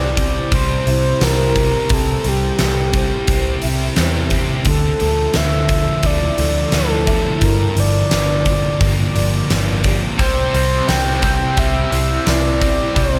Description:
rock, shoegaze and dream pop; 87 BPM; 4/4; straight; C mixolydian; A4 = 440 Hz
reedy FM lead; melody; 0.0-13.2 s; G4 to G5; -23 LUFS; equal; chorus, analog delay
fingerpicked twelve-string acoustic guitar; arpeggios; 0.0-13.2 s; E3 to G4; -30 LUFS; equal; ensemble chorus, analog delay
crunchy overdriven guitar; riff; 0.0-13.2 s; G2 to C4; -27 LUFS; equal; reverse reverb
thick fuzz guitar; riff; 0.0-13.2 s; G2 to C4; -26 LUFS; equal; distortion, analog chorus
vintage muted picked electric bass; bass; 0.0-13.2 s; G1 to E2; -22 LUFS; equal
huge arena drum kit; drums; 0.2-13.1 s; hi-hat, kick drum, snare drum; -22 LUFS; equal
biting overdriven guitar; riff; 10.2-13.2 s; C3 to C4; -26 LUFS; equal; tremolo
moderate huge ambient reverb, RT60 7.0 s; dreamy mix soaked in reverb; -17 LUFS; mono
0.0-13.2 A section
0.0 C; 4.7 Dmadd9; 7.4 Gm7; 10.2 C

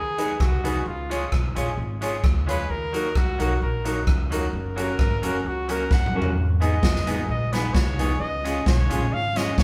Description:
ska; 131 BPM; 4/4; straight; G# dorian; A4 = 440 Hz
clear trumpet; melody; 0.0-9.6 s; E#4 to F#5; -31 LUFS; equal
upright bass; bass; 0.0-9.6 s; F#1 to D#2; -30 LUFS; equal
electric guitar at the edge of break-up; accompaniment; 0.2-9.5 s; F#3 to G#4; -35 LUFS; equal; spring reverb
dark upright piano; stabs; 0.2-9.5 s; B3 to C#5; -32 LUFS; equal
swinging big-band drum kit; drums; 0.2-9.6 s; hi-hat, kick drum, rim click, snare drum, toms; -26 LUFS; equal
wet large studio reverb, RT60 0.9 s; band playing live in one room; -24 LUFS; mono
0.0-9.6 A section
trumpet solo 0.0-9.6; drum fill 5.9-6.4
0.0 G#m; 0.9 C#; 2.7 D#m; 4.5 F#; 6.4 G#m; 8.2 C#

